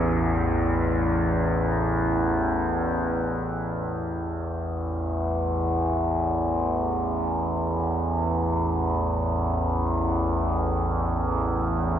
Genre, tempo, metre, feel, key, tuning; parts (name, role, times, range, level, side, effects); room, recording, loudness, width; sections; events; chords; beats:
dark ambient drone; free time; A4 = 440 Hz
overtone-sweeping drone; drone; 0.0-12.0 s; A1 to E2; -23 LUFS; equal; chorus, built-in reverb
bronze singing bowl; texture; 0.0-3.6 s; E4; -40 LUFS; equal
wet cathedral reverb, RT60 6.0 s; dark, warm production; -23 LUFS; side -9 dB against mid
0.0-3.5 A section; 3.5-12.0 B section
0.0 A5
free time